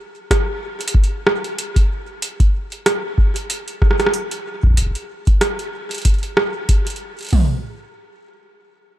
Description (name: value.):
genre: IDM.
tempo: 94 BPM.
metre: 4/4.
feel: swing 56% on 16ths.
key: none.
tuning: none.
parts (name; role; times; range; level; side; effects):
electro analog drum machine; drums; 0.3-7.5 s; hi-hat, kick drum, toms; -15 LUFS; equal; overdrive.
electro analog drum machine; drums; 0.3-7.3 s; hi-hat, rim click; -21 LUFS; right 1 dB; overdrive.
room: little or no reverb.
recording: dark, warm production.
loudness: -16 LUFS.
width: side -13 dB against mid.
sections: 0.0-7.3 A section; 7.3-9.0 B section.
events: none.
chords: none.